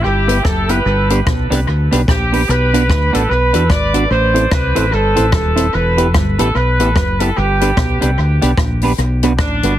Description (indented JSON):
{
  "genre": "ska",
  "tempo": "148 BPM",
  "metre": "4/4",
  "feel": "swing 61% on 8ths",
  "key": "E minor",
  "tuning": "A4 = 440 Hz",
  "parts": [
    { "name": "clear horn section", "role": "melody", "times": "0.0-9.8 s", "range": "D4 to D5", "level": "-17 LUFS", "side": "right 1 dB", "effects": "tape echo" },
    { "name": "clean electric guitar", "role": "accompaniment", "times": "0.0-9.7 s", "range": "B3 to C5", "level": "-18 LUFS", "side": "right 2 dB", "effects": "phaser" },
    { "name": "fingered electric bass", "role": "bass", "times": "0.0-9.8 s", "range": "D#1 to E2", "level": "-16 LUFS", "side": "equal", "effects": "none" },
    { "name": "compact cocktail drum kit", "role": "drums", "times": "0.3-9.7 s", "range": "hi-hat, kick drum, rim click", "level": "-19 LUFS", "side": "left 1 dB", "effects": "tape echo" }
  ],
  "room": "light reverb",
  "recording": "heavily compressed radio sound",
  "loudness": "-12 LUFS",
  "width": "side -12 dB against mid",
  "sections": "0.0-9.8 A section",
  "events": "none",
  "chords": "0.0 Em; 0.9 G; 2.5 Bm; 4.1 Am; 5.7 Em; 7.4 G; 9.0 Bm",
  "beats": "0.04 0.45 | 0.85 1.26 1.67 2.07 | 2.48 2.89 3.29 3.70 | 4.11 4.51 4.92 5.33 | 5.73 6.14 6.54 6.95 | 7.36 7.76 8.17 8.57 | 8.98 9.39"
}